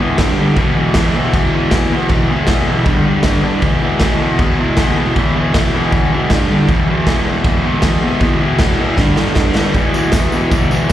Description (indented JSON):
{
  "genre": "garage rock duo or trio",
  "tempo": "157 BPM",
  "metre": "4/4",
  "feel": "straight",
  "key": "E minor",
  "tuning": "A4 = 440 Hz",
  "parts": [
    { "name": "fuzz guitar", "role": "riff", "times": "0.0-10.9 s", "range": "E2 to G3", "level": "-14 LUFS", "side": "equal", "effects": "distortion, slapback echo" },
    { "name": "raw garage drum kit", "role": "drums", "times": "0.2-10.9 s", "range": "crash cymbal, kick drum, snare drum", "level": "-15 LUFS", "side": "equal", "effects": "none" },
    { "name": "tambourine", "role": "percussion", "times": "9.8-10.9 s", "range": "none", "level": "-32 LUFS", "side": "left 1 dB", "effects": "none" }
  ],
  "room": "light reverb",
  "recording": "live gig heard through the venue's PA, club reverb",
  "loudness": "-12 LUFS",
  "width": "side -12 dB against mid",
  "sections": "0.0-10.9 A section",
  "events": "drum fill 9.0-9.8",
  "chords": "0.2 G5; 0.6 E5; 2.9 G5; 3.6 E5; 6.3 G5; 6.7 E5; 9.0 G5; 9.8 E5"
}